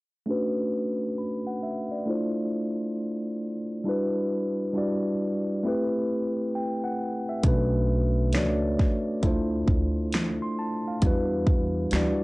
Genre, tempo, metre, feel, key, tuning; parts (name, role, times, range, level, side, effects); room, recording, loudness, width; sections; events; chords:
lo-fi hip hop; 67 BPM; 4/4; swing 64% on 16ths; B minor; A4 = 444 Hz
mellow tine electric piano; accompaniment; 0.3-12.2 s; G3 to C6; -26 LUFS; equal; medium stereo tremolo, cassette tape, low-pass filter
upright bass; bass; 7.4-12.2 s; B1 to E2; -28 LUFS; equal; transformer saturation
pop drum kit; drums; 7.4-12.2 s; finger snaps, hi-hat, kick drum, snare drum; -25 LUFS; equal; vintage 12-bit sampler grit
light reverb; dry, gritty hardware recording, cassette tape; -24 LUFS; side -22 dB against mid
0.3-12.2 A section
filter sweep on tine electric piano 0.3-12.2
0.3 Bm9; 2.1 Dm9; 3.9 Em9; 5.6 Am9; 7.4 Bm9; 9.2 Dm9; 11.0 Em9